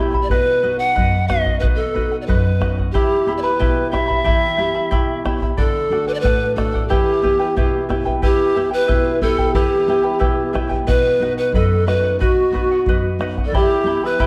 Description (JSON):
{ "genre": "andean folk, Andean ensemble", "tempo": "91 BPM", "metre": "2/4", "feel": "straight", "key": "unclear", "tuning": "A4 = 440 Hz", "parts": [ { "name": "charango", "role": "accompaniment", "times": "0.0-14.3 s", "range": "E4 to B5", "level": "-26 LUFS", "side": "equal", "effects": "none" }, { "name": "nylon-string guitar", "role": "accompaniment", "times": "0.0-14.3 s", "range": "F#2 to G4", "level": "-25 LUFS", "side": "equal", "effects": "none" }, { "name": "bombo", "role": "percussion", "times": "0.1-14.3 s", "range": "none", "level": "-23 LUFS", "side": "equal", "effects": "none" }, { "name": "breathy bright polished pan flute", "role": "melody", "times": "0.2-14.3 s", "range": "F#4 to F#5", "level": "-21 LUFS", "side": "equal", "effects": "none" }, { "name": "large quena", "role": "second line", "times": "12.2-14.3 s", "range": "F#4 to D5", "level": "-26 LUFS", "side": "equal", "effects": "none" } ], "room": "wet recital hall reverb, RT60 1.5 s", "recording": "dark, warm production", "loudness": "-18 LUFS", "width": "mono", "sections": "0.0-8.2 A section; 8.2-14.3 A section", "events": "none", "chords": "0.3 B; 2.9 Em; 5.6 D; 6.9 Em; 10.9 B; 13.5 Em" }